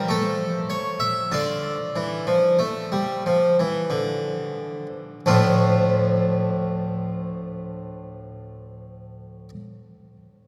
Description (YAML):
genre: classical, baroque-style suite movement for harpsichord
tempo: 43-53 BPM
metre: 3/4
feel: rubato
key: D minor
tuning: A4 = 440 Hz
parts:
  - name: harpsichord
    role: solo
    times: 0.0-9.5 s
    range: D2 to E5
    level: -24 LUFS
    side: equal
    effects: none
room: wet cathedral reverb, RT60 5.4 s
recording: heard from further back in the room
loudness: -23 LUFS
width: mono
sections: 0.0-5.2 A section; 5.2-9.2 B section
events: slowing down 0.0-5.2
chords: 0.1 N.C.; 1.3 Dm